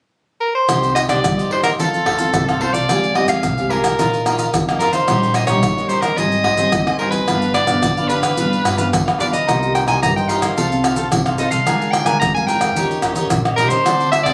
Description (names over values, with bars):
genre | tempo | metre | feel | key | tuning
samba and choro | 109 BPM | 4/4 | straight | C minor | A4 = 440 Hz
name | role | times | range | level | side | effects
bright soprano saxophone | melody | 0.4-14.3 s | A4 to Bb5 | -21 LUFS | equal | plate reverb
cavaquinho | accompaniment | 0.7-14.3 s | D4 to Ab5 | -25 LUFS | equal | none
nylon-string guitar | accompaniment | 0.7-14.3 s | G2 to D5 | -26 LUFS | equal | none
upright bass | bass | 0.7-14.3 s | G1 to G2 | -27 LUFS | equal | none
maracas, surdo, pandeiro and tamborim | percussion | 0.7-14.3 s | none | -22 LUFS | equal | none
room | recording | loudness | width
moderate small room reverb, RT60 0.5 s | recorded on a phone in the room, club reverb | -17 LUFS | mono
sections
0.7-14.3 A section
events
none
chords
0.0 N.C.; 0.7 Cmadd9; 1.8 F; 2.9 Fmadd9; 4.0 Bbsus4; 5.1 Eb7/Bb; 6.2 Abmaj7; 7.3 G7; 9.5 Cm7; 10.6 F/C; 11.7 Bb7/D; 12.8 Eb7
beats
0.14 | 0.69 1.24 1.79 2.34 | 2.89 3.44 3.99 4.54 | 5.09 5.64 6.19 6.74 | 7.29 7.83 8.38 8.93 | 9.48 10.03 10.58 11.12 | 11.67 12.22 12.77 13.31 | 13.86